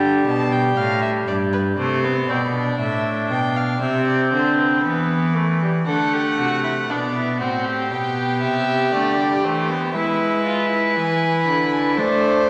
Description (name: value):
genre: classical, baroque-style fugue for string quartet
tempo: 59 BPM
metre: 4/4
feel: straight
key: unclear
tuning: A4 = 439 Hz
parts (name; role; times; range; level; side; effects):
- warm violin; melody; 0.0-12.5 s; B4 to B5; -29 LUFS; equal; none
- rich viola; accompaniment; 0.0-12.5 s; G3 to F4; -25 LUFS; equal; none
- rich cello; bass; 0.0-12.5 s; G2 to A3; -24 LUFS; equal; none
- rich violin; second line; 5.9-12.5 s; D4 to C5; -24 LUFS; equal; none
room: wet concert hall reverb, RT60 1.9 s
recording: none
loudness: -20 LUFS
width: mono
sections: 0.0-5.9 A section; 5.9-12.5 B section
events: none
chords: 0.0 G; 1.8 C; 5.9 D7; 7.9 G/B; 10.0 E7/G#; 12.0 Am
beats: 0.78 | 1.79 2.80 3.82 4.84 | 5.87 6.90 7.92 8.93 | 9.95 10.97 11.98